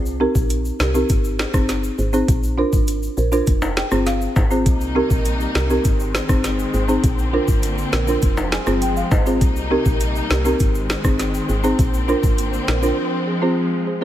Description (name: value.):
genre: dancehall.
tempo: 101 BPM.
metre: 4/4.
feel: straight.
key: C minor.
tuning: A4 = 439 Hz.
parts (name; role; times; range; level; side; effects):
woody FM bass; bass; 0.0-12.9 s; F1 to C2; -23 LUFS; equal; none.
tube shaker and timbales; percussion; 0.1-13.0 s; none; -31 LUFS; left 3 dB; none.
folk marimba with medium mallets; accompaniment; 0.2-14.0 s; C4 to Ab5; -21 LUFS; right 1 dB; sidechain pumping.
island pop drum kit; drums; 0.4-12.8 s; hi-hat, kick drum, rim click, snare drum; -20 LUFS; equal; none.
rich studio string section; sustained chords; 4.7-14.0 s; C3 to Eb4; -26 LUFS; left 1 dB; sidechain pumping.
room: light reverb, small room reverb.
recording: heavily compressed radio sound, multiband compression.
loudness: -16 LUFS.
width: side -12 dB against mid.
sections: 0.0-14.0 A section.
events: marimba fill 3.5-4.7, 8.2-9.4; silent gap 13.0-14.0.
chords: 0.0 Cm7; 1.1 Ab; 2.3 Bbadd9; 3.5 Fm; 4.7 Cm7; 5.8 Ab; 7.0 Bbadd9; 8.2 Fm; 9.4 Cm7; 10.6 Ab; 11.8 Bbadd9; 13.0 Fm.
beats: 0.50 1.10 1.69 | 2.28 2.88 3.47 4.07 | 4.66 5.25 5.85 6.44 | 7.04 7.63 8.22 8.82 | 9.41 10.01 10.60 11.20 | 11.79 12.38 12.98 13.57.